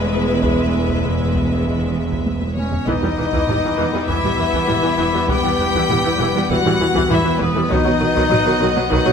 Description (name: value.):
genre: cinematic, suspense film score.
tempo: 99 BPM.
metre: 4/4.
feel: straight.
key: E hungarian minor.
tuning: A4 = 440 Hz.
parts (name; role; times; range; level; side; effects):
clear studio violin section; melody; 0.0-9.1 s; B4 to G5; -23 LUFS; left 4 dB; none.
rich studio violin section; second line; 0.0-9.1 s; B3 to B4; -27 LUFS; left 2 dB; none.
warm studio viola section; accompaniment; 0.0-9.1 s; D#3 to G#3; -22 LUFS; right 1 dB; none.
rich symphonic double bass section; bass; 0.0-9.0 s; E1 to B1; -26 LUFS; right 2 dB; none.
warm studio cello section; bass; 0.0-9.1 s; E2 to B2; -26 LUFS; right 2 dB; none.
metallic inharmonic drone; drone; 0.0-9.1 s; B1 to E2; -26 LUFS; right 1 dB; none.
concert harp; texture; 0.1-9.1 s; E4 to A#5; -32 LUFS; left 6 dB; none.
mellow French horn section; sustained chords; 0.4-9.1 s; F#3 to E4; -28 LUFS; left 4 dB; none.
taiko ensemble; drums; 0.4-9.1 s; none; -25 LUFS; right 1 dB; none.
warm clarinet; second line; 2.6-9.1 s; B3 to G4; -22 LUFS; left 2 dB; none.
warm studio violin section; texture; 2.9-9.1 s; B5 to A#6; -30 LUFS; left 2 dB; none.
room: moderate concert hall reverb, RT60 1.9 s.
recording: faint mains hum.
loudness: -15 LUFS.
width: side -6 dB against mid.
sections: 0.0-2.9 A section; 2.9-9.1 B section.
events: drum fill 2.3-2.9.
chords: 0.0 E; 2.9 Em; 7.7 B.